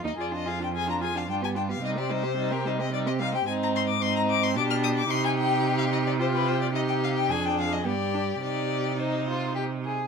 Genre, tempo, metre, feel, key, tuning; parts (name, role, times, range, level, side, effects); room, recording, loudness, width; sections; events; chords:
quick classical-period movement for string quartet; 110 BPM; 3/4; straight; C minor; A4 = 440 Hz
rich violin; second line; 0.0-10.1 s; Eb4 to Ab4; -31 LUFS; left 4 dB
warm viola; accompaniment; 0.0-9.9 s; G3 to F4; -31 LUFS; right 3 dB
rich violin; melody; 0.1-9.6 s; Bb4 to F6; -29 LUFS; left 7 dB
rich cello; bass; 0.1-9.9 s; Eb2 to C3; -30 LUFS; right 6 dB
light reverb; minimal, uncompressed stereo recording; -24 LUFS; side -5 dB against mid
0.0-10.1 A section
0.2 Ddim/F; 1.3 G7; 1.8 Cm; 3.5 Ab; 4.6 G/B; 5.1 Cm; 6.2 Csus4; 6.7 Cm; 7.3 Ddim/F; 7.8 G5; 8.4 Cm